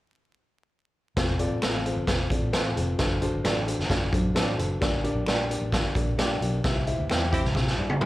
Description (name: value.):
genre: uptempo 1960s-style soul.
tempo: 132 BPM.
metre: 4/4.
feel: straight.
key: F major.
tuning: A4 = 439 Hz.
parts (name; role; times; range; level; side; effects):
dark upright piano; accompaniment; 1.2-8.1 s; C4 to G5; -30 LUFS; left 2 dB; slapback echo.
vintage muted fingered electric bass; bass; 1.2-8.0 s; F1 to C3; -29 LUFS; equal; none.
raw garage drum kit; drums; 1.2-8.1 s; hi-hat, kick drum, snare drum, toms; -26 LUFS; equal; none.
electric guitar through a small old amp; stabs; 1.6-8.1 s; F#3 to A4; -32 LUFS; right 4 dB; slapback echo.
finger snap; percussion; 1.6-8.1 s; none; -39 LUFS; left 2 dB; none.
warm horn section; second line; 7.3-7.5 s; C4 to G4; -30 LUFS; right 1 dB; slapback echo.
room: little or no reverb.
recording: live gig heard through the venue's PA, club reverb, vinyl crackle.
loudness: -23 LUFS.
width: side -16 dB against mid.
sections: 1.2-8.1 A section.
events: band accent 6.6-8.1; drum fill 7.6-8.1.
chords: 1.2 F; 3.0 D7/F#; 4.8 Gm; 6.6 C.